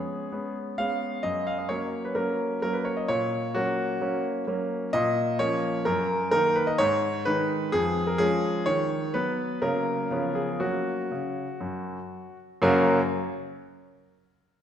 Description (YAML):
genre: classical-period piano sonatina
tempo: 117-131 BPM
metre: 4/4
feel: rubato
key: F# major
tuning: A4 = 440 Hz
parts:
  - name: warm concert grand piano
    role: solo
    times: 0.0-13.0 s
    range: E#2 to E#5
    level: -24 LUFS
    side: equal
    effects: none
room: wet scoring stage reverb, RT60 1.6 s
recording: recorded in a church or concert hall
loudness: -24 LUFS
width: side -9 dB against mid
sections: 0.0-12.6 A section; 12.6-14.6 B section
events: slowing down 7.7-12.6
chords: 0.0 C#7; 1.2 F#; 3.1 F#/A#; 4.9 A#m; 5.9 D#m/F#; 6.8 G#m; 7.7 C#/E#; 8.7 B/D#; 9.6 F#/C#; 10.1 C#7; 10.6 F#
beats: 0.32 0.78 | 1.24 1.71 2.17 2.63 | 3.10 3.56 4.01 4.47 | 4.93 5.40 5.87 6.33 | 6.80 7.26 7.73 8.20 | 8.67 9.14 9.62 10.11 | 10.60 11.10 11.60 12.11 | 12.62